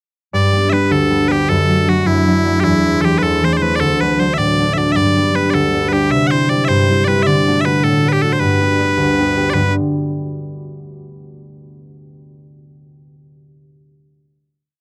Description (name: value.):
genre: celtic folk, Celtic jig.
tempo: 104 BPM (dotted quarters).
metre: 6/8.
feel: straight.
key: G major.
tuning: A4 = 440 Hz.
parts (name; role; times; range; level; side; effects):
loud bright bagpipes; melody; 0.3-9.7 s; E4 to F#5; -19 LUFS; equal; none.
concert harp; accompaniment; 0.3-11.6 s; D2 to G4; -17 LUFS; equal; none.
room: light reverb.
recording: dry, close 1970s-style studio recording.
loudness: -15 LUFS.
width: mono.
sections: 0.3-9.5 A section; 9.5-10.7 final chord.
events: none.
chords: 0.3 G; 1.5 D/F#; 2.6 Am/E; 3.8 D; 5.0 G; 6.1 C; 7.3 D; 8.4 G.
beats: | 0.33 0.91 | 1.49 2.06 | 2.64 3.22 | 3.80 4.38 | 4.95 5.53 | 6.11 6.68 | 7.25 7.83 | 8.40 8.97 | 9.54 10.12.